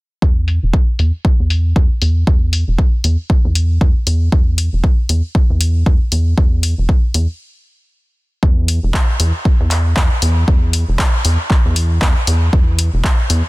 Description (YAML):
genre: deep house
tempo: 117 BPM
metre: 4/4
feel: swing 58% on 16ths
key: unclear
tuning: A4 = 441 Hz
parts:
  - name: rubbery square bass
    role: bass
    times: 0.2-13.4 s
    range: E1 to E2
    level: -14 LUFS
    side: equal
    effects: sidechain pumping
  - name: electronic kick drum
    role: drums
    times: 0.2-13.2 s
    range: none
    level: -13 LUFS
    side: equal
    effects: none
  - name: punchy analog drum machine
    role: drums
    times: 0.5-13.4 s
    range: handclaps, hi-hat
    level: -21 LUFS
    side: left 1 dB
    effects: low-pass filter on hats, low-pass filter on snare, low-pass filter on room
room: little or no reverb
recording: dense, heavily limited modern master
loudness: -12 LUFS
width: side -21 dB against mid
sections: 0.2-8.4 A section; 8.4-13.5 B section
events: filter sweep on analog synth bass 0.2-8.4; stop 7.4-8.4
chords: none